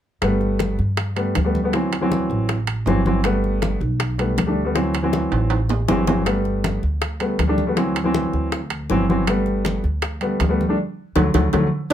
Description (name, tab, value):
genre	Afro-Cuban jazz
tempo	159 BPM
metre	4/4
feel	straight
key	G major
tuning	A4 = 440 Hz
part	warm baby grand piano	accompaniment	0.2-11.7 s	D3 to D4	-21 LUFS	left 1 dB	none
part	upright bass	bass	0.2-11.7 s	G1 to G2	-23 LUFS	equal	none
part	bongos	percussion	0.2-11.9 s	none	-29 LUFS	left 8 dB	none
part	congas	percussion	0.2-11.6 s	none	-27 LUFS	left 1 dB	none
part	timbales	percussion	0.2-11.9 s	none	-27 LUFS	right 6 dB	none
room	light reverb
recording	none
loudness	-18 LUFS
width	side -10 dB against mid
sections	0.2-11.9 A section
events	drum fill 5.1-6.3, 10.8-11.9; band accent 10.8-11.9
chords	0.2 Gadd9; 1.7 D7; 3.2 Gadd9; 4.8 D7; 6.3 Gadd9; 7.8 D7; 9.3 Gadd9; 10.8 D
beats	| 0.22 0.60 0.98 1.35 | 1.73 2.11 2.49 2.87 | 3.25 3.62 4.00 4.38 | 4.76 5.13 5.51 5.89 | 6.26 6.64 7.02 7.39 | 7.77 8.15 8.53 8.90 | 9.28 9.65 10.03 10.41 | 10.79 11.16 11.54 11.91